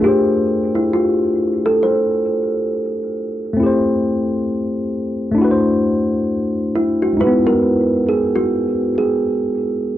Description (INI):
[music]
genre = hip hop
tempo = 67 BPM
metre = 4/4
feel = swing 60% on 16ths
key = unclear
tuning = A4 = 443 Hz
[part]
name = kalimba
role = melody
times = 0.0-9.8 s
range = E4 to C5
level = -18 LUFS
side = right 1 dB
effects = low-pass filter
[part]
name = tine electric piano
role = accompaniment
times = 0.0-10.0 s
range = G#3 to C5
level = -17 LUFS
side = left 1 dB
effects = cassette tape, low-pass filter
[sound]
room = moderate small room reverb, RT60 0.5 s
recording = dark, warm production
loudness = -15 LUFS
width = side -12 dB against mid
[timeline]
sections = 0.0-10.0 A section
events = none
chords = 0.0 F69; 3.6 Am7; 5.4 D9; 7.2 Emaj9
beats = | 0.02 0.91 1.81 2.71 | 3.60 4.50 5.39 6.29 | 7.18 8.08 8.97 9.87